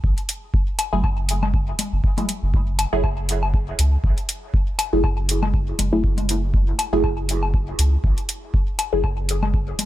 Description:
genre	dub techno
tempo	120 BPM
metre	4/4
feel	swing 56% on 16ths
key	F# minor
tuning	A4 = 440 Hz
part	filtered dub chord stab	stabs	0.0-9.0 s	F#3 to G#4	-26 LUFS	equal	phaser, sidechain pumping, dub echo
part	soft dub sub bass	bass	0.0-9.7 s	F#1 to C#2	-22 LUFS	equal	sidechain pumping
part	electronic kick drum	drums	0.0-9.7 s	none	-21 LUFS	equal	none
part	electronic hi-hat	drums	0.2-9.9 s	none	-24 LUFS	equal	none
part	woodblock and congas	percussion	0.8-9.9 s	none	-29 LUFS	left 4 dB	overdrive, sidechain pumping on perc, dub echo
room	little or no reverb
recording	none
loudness	-19 LUFS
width	side -14 dB against mid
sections	0.0-9.9 A section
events	none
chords	0.0 F#m9

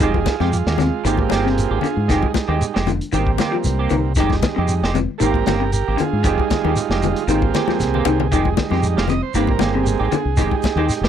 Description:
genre	afrobeat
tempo	116 BPM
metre	4/4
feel	straight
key	F minor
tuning	A4 = 440 Hz
part	overdriven combo organ	accompaniment	0.0-11.1 s	G3 to F5	-22 LUFS	right 12 dB	none
part	electric guitar through a small old amp	arpeggios	0.0-10.9 s	C3 to F3	-23 LUFS	left 6 dB	lush chorus
part	semi-hollow electric guitar	stabs	0.0-11.1 s	Eb3 to G4	-24 LUFS	right 6 dB	analog chorus
part	deep dub fingered electric bass	bass	0.0-11.1 s	F1 to Ab2	-21 LUFS	left 1 dB	none
part	crunchy breakbeat drum kit	drums	0.0-11.1 s	hi-hat, kick drum, snare drum	-23 LUFS	left 1 dB	none
part	shekere	percussion	0.0-11.0 s	none	-26 LUFS	right 2 dB	none
part	congas	percussion	0.1-10.9 s	none	-25 LUFS	left 13 dB	none
room	little or no reverb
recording	dry, close 1970s-style studio recording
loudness	-16 LUFS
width	side -9 dB against mid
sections	0.0-11.1 A section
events	transistor combo organ solo 0.0-11.1; drum fill 7.7-8.3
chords	0.0 Fm9; 1.1 Abmaj9; 2.1 Fm9; 3.1 Abmaj9; 4.2 Fm9; 5.2 Abmaj9; 6.2 Fm9; 7.3 Abmaj9; 8.3 Fm9; 9.3 Abmaj9; 10.4 Fm9

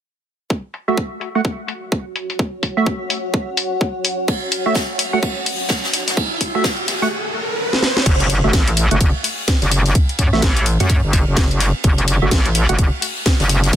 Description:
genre	bass house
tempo	127 BPM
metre	4/4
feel	swing 60% on 16ths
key	F# minor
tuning	A4 = 440 Hz
part	electronic kick drum	drums	0.5-13.8 s	none	-17 LUFS	equal	high-pass filter on kick
part	granular cloud pad	texture	1.8-7.1 s	F#4 to F#5	-27 LUFS	equal	built-in reverb, sidechain pumping
part	garage drum kit	drums	0.7-13.8 s	crash cymbal, hi-hat, snare drum	-20 LUFS	left 1 dB	low-pass filter on hats, low-pass filter on snare, low-pass filter on cymbals
part	percussive organ stab	stabs	0.9-12.7 s	A3 to F#5	-22 LUFS	right 3 dB	analog chorus, sidechain pumping, ping-pong delay
part	jazz brush drum kit	drums	4.3-13.8 s	hi-hat, ride cymbal, snare drum	-25 LUFS	right 1 dB	high-pass filter on cymbals, high-pass filter on hats, high-pass filter on snare, high-pass filter on room
part	riser	sound effects	5.5-8.1 s	none	-25 LUFS	right 1 dB	none
part	metallic wobble bass	bass	8.1-13.7 s	F#1 to F#2	-16 LUFS	equal	chorus, overdrive, sidechain pumping
room	small room reverb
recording	dense, heavily limited modern master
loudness	-15 LUFS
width	side -10 dB against mid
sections	0.5-8.1 A section; 8.1-13.8 B section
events	fade-in on ambient pad 0.5-8.1; filter sweep on drum 0.5-8.1; riser 5.5-8.1; drum fill 7.7-8.1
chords	0.5 F#m

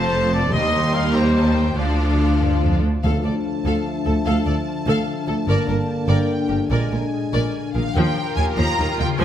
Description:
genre	cinematic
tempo	97 BPM (dotted quarters)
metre	6/8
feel	straight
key	D minor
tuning	A4 = 440 Hz
part	warm symphonic violin section	melody	0.0-9.2 s	F5 to C6	-30 LUFS	left 1 dB	none
part	rich symphonic violin section	second line	0.0-9.2 s	C4 to F5	-30 LUFS	left 2 dB	none
part	clear symphonic viola section	accompaniment	0.0-9.2 s	Eb3 to Bb4	-25 LUFS	equal	none
part	concert harp	arpeggios	0.0-9.2 s	F2 to G5	-27 LUFS	left 10 dB	none
part	mellow trumpet section	stabs	0.0-2.4 s	C5 to F5	-23 LUFS	equal	none
part	rich chamber double bass section	bass	0.0-9.2 s	F1 to Eb2	-22 LUFS	right 1 dB	none
part	rich symphonic cello section	bass	0.0-9.2 s	Db2 to Bb2	-25 LUFS	right 1 dB	none
part	clear trombone section	sustained chords	3.0-7.7 s	D3 to Bb3	-26 LUFS	right 2 dB	none
part	timpani	percussion	3.0-3.6 s	D3	-31 LUFS	equal	none
room	moderate scoring stage reverb, RT60 1.7 s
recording	none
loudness	-18 LUFS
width	side -10 dB against mid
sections	0.0-3.0 A section; 3.0-8.0 B section; 8.0-9.2 C section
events	none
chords	0.0 F; 0.5 Eb; 1.8 Dm; 5.5 Gm; 6.7 Bb7; 8.0 Ebadd9

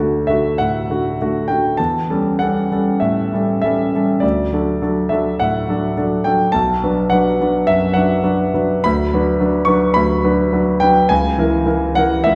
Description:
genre	classical, romantic character piece for solo piano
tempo	92-112 BPM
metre	4/4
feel	rubato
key	D major, B minor from 8.9 s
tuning	A4 = 440 Hz
part	clear concert grand piano	solo	0.0-12.3 s	B1 to C#6	-17 LUFS	equal	none
room	wet recital hall reverb, RT60 1.4 s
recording	recorded in a church or concert hall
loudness	-17 LUFS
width	mono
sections	0.0-12.3 A section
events	none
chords	0.0 D; 1.8 A7/E; 4.2 D; 6.5 Bm7; 8.9 Bm/D; 11.1 A#dim/C#

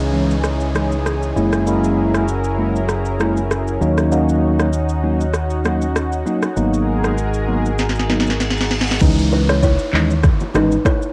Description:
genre	afrobeats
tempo	98 BPM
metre	4/4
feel	swing 55% on 16ths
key	C# dorian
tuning	A4 = 440 Hz
part	lush unison pad	sustained chords	0.0-9.0 s	C#3 to A#4	-25 LUFS	equal	chorus, cassette tape
part	deep dub fingered electric bass	bass	0.0-10.8 s	F#1 to D#2	-23 LUFS	equal	none
part	downlifter and reverse cymbal	sound effects	0.0-11.1 s	none	-34 LUFS	equal	none
part	tine electric piano	accompaniment	0.1-10.7 s	E3 to E4	-21 LUFS	equal	cassette tape
part	afro-pop drum kit	drums	0.3-11.1 s	crash cymbal, handclaps, kick drum, rim click, shaker, snare drum	-22 LUFS	equal	cassette tape
part	congas and bongos	percussion	9.0-11.0 s	none	-29 LUFS	equal	none
part	kalimba	riff	9.3-11.0 s	D#4 to C#5	-23 LUFS	equal	cassette tape, tape echo
room	light reverb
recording	home recording on cassette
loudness	-18 LUFS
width	mono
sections	0.0-9.0 A section; 9.0-11.1 B section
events	drum fill 7.8-9.0; reverse cymbal 8.0-9.0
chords	0.0 C#madd9; 1.4 F#7; 3.8 D#m7; 6.6 G#m7; 9.0 C#madd9

